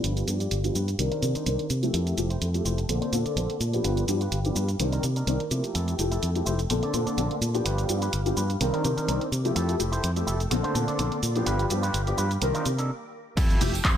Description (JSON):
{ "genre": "filtered disco house", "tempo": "126 BPM", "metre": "4/4", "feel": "swing 54% on 16ths", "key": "F major", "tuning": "A4 = 439 Hz", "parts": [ { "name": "clear grand piano", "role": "accompaniment", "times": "0.0-13.7 s", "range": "D3 to Bb4", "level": "-29 LUFS", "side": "left 1 dB", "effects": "phaser, sidechain pumping, low-pass filter" }, { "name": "string machine, full ensemble", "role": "sustained chords", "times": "0.0-14.0 s", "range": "G4 to E6", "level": "-36 LUFS", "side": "equal", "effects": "phaser, ensemble chorus, sidechain pumping, low-pass filter" }, { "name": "electric guitar with an envelope filter", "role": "riff", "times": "0.0-14.0 s", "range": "D4 to D5", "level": "-35 LUFS", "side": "equal", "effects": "sidechain pumping, low-pass filter" }, { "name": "fingered electric bass", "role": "bass", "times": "0.0-14.0 s", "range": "F1 to C3", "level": "-27 LUFS", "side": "equal", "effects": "sidechain pumping, low-pass filter" }, { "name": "punchy analog drum machine", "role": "drums", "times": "0.0-13.9 s", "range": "crash cymbal, handclaps, hi-hat, shaker", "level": "-32 LUFS", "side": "right 2 dB", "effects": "sidechain pumping on hats, small room ambience, sidechain pumping on perc, sidechain pumping on cymbals" }, { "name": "electronic kick drum", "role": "drums", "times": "13.4-13.9 s", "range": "none", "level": "-22 LUFS", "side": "equal", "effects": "small room ambience" }, { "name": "tambourine and congas", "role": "percussion", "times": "13.4-14.0 s", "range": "none", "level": "-36 LUFS", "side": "right 4 dB", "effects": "sidechain pumping on perc, low-pass filter on perc" } ], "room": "light reverb", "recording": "none", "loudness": "-24 LUFS", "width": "side -9 dB against mid", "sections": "0.0-13.4 A section", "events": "filter sweep 0.0-13.4; stop 12.9-13.4", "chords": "0.0 G7; 1.0 Cm9; 1.9 Fmaj9; 2.9 Bbmaj9; 3.8 G7; 4.8 Cm9; 5.8 Fmaj9; 6.7 Bbmaj9; 7.7 G7; 8.6 Cm9; 9.6 Fmaj9; 10.5 Bbmaj9; 11.5 G7; 12.4 Cm9; 13.4 Fmaj9" }